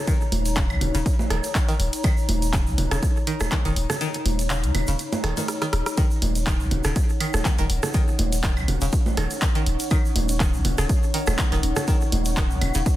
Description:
minimal techno; 122 BPM; 4/4; swing 55% on 16ths; Eb minor; A4 = 441 Hz
warbly tape-like pad; texture; 0.0-13.0 s; Eb4 to Bb5; -32 LUFS; left 2 dB; chorus, built-in reverb, sidechain pumping
string-like resonator pluck; riff; 0.1-12.8 s; Db3 to Eb3; -31 LUFS; equal; chorus, phaser, sidechain pumping, tape echo
electronic kick drum; drums; 0.1-13.0 s; -22 LUFS; equal; studio reverb
punchy analog drum machine; drums; 0.1-13.0 s; handclaps, hi-hat, rim click; -29 LUFS; equal; studio reverb
tube shaker; percussion; 0.1-13.0 s; -36 LUFS; right 3 dB
punchy sub bass; bass; 0.3-12.8 s; Eb1 to Db2; -24 LUFS; equal; sidechain pumping
electronic congas, woodblock and rim click; percussion; 0.3-12.7 s; -29 LUFS; right 4 dB; soft clipping on snare, studio reverb, digital delay
swarming drone; texture; 8.3-13.0 s; Db4; -37 LUFS; equal; built-in reverb, sidechain pumping
little or no reverb; dense, heavily limited modern master; -20 LUFS; side -14 dB against mid
0.0-13.0 A section
kick drops out 4.0-6.0; drum fill 5.5-6.0
0.0 Ebm7

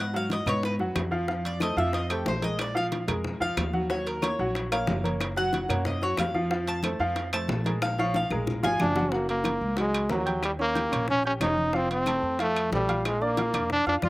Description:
latin, salsa; 184 BPM; 4/4; straight; Eb minor; A4 = 440 Hz
Cuban tres; melody; 0.0-8.9 s; G4 to A5; -31 LUFS; left 1 dB
clear upright piano; accompaniment; 0.0-14.1 s; F3 to G6; -30 LUFS; equal
upright bass; bass; 0.0-14.1 s; F1 to Ab2; -32 LUFS; equal
bongos; percussion; 0.1-14.1 s; -36 LUFS; left 4 dB; slapback echo
congas; percussion; 0.1-14.1 s; -34 LUFS; equal
timbales; percussion; 0.3-13.9 s; -36 LUFS; right 3 dB
claves; percussion; 0.5-14.1 s; -36 LUFS; left 3 dB
brilliant trombone; melody; 8.8-14.1 s; Gb3 to F4; -26 LUFS; equal
little or no reverb; recorded outdoors, with no room sound; -24 LUFS; side -18 dB against mid
0.0-9.1 A section; 9.1-14.1 B section
Cuban tres solo 0.0-9.1; drum fill 7.8-9.1, 13.9
0.0 Abm7; 1.3 F; 2.6 Bb5; 3.9 Ebm9; 5.2 Gbmaj7; 6.5 F; 7.8 Bb5; 8.5 Bb7; 9.1 Gb; 10.4 Eb7; 11.7 F; 13.0 Bb

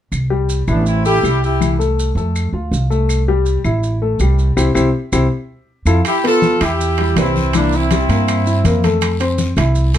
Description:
latin, salsa; 162 BPM; 4/4; straight; C major; A4 = 441 Hz
upright bass; bass; 0.1-10.0 s; A1 to G2; -16 LUFS; right 1 dB
claves; percussion; 0.1-9.8 s; -30 LUFS; left 5 dB
maracas; percussion; 0.1-10.0 s; -31 LUFS; right 6 dB
clear concert grand piano; accompaniment; 0.3-10.0 s; E3 to F5; -19 LUFS; left 4 dB
bright horn section; melody; 0.7-1.8, 6.1-8.9 s; Bb3 to A4; -17 LUFS; right 1 dB
timbales; percussion; 6.0-10.0 s; -25 LUFS; right 8 dB
congas; percussion; 6.1-10.0 s; -21 LUFS; left 3 dB
guiro; percussion; 6.1-10.0 s; -34 LUFS; left 4 dB
light reverb; dark, warm production; -13 LUFS; side -10 dB against mid
0.1-6.1 A section; 6.1-10.0 B section
band accent 4.6-6.1
0.1 C6; 2.4 F; 3.1 Am7; 4.6 C; 5.3 Fmaj7; 6.1 Cmaj7; 7.5 C7; 9.0 Fmaj7

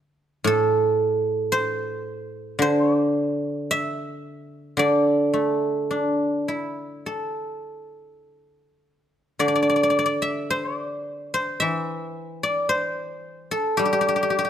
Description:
chinese traditional, Chinese solo plucked strings; 51-57 BPM; 4/4; rubato; D shang mode; A4 = 437 Hz
guzheng; solo; 0.4-14.5 s; A2 to E5; -21 LUFS; equal
little or no reverb; close, detailed microphones; -21 LUFS; side -9 dB against mid
0.0-9.4 A section; 9.4-14.5 B section

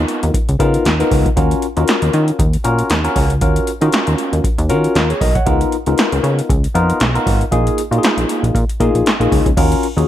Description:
early-eighties boogie funk; 117 BPM; 4/4; swing 56% on 16ths; Eb minor; A4 = 440 Hz
barky tine electric piano; accompaniment; 0.0-10.1 s; Bb3 to Gb5; -17 LUFS; left 2 dB; overdrive, phaser
plucky analog bass; bass; 0.0-10.0 s; Ab1 to Eb3; -16 LUFS; equal
electro analog drum machine; drums; 0.1-10.1 s; crash cymbal, handclaps, hi-hat, kick drum, snare drum; -18 LUFS; equal; overdrive, gated reverb
little or no reverb; -13 LUFS; side -12 dB against mid
0.0-9.6 A section
0.0 Db13; 1.4 Ebm9; 5.5 Db13; 7.5 Bb7sus4; 9.6 Ebm9

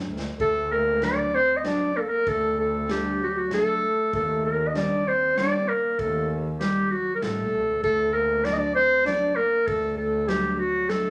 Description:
klezmer; 97 BPM; 3/4; straight; D phrygian dominant; A4 = 440 Hz
nylon-string guitar; accompaniment; 0.0-11.1 s; Bb2 to Eb4; -34 LUFS; equal
warm double bass; bass; 0.0-10.8 s; A1 to Eb2; -35 LUFS; equal
street-band drum kit; drums; 0.2-11.0 s; kick drum, ride cymbal, snare drum; -41 LUFS; equal
mellow clarinet; melody; 0.4-11.1 s; F#4 to Eb5; -25 LUFS; equal
trombone with bucket mute; second line; 0.4-11.1 s; F#3 to D4; -34 LUFS; equal
wet large studio reverb, RT60 0.8 s; -24 LUFS; mono
0.4-11.1 A section
drum fill 0.0-0.4
0.4 D; 4.1 Eb; 7.8 D

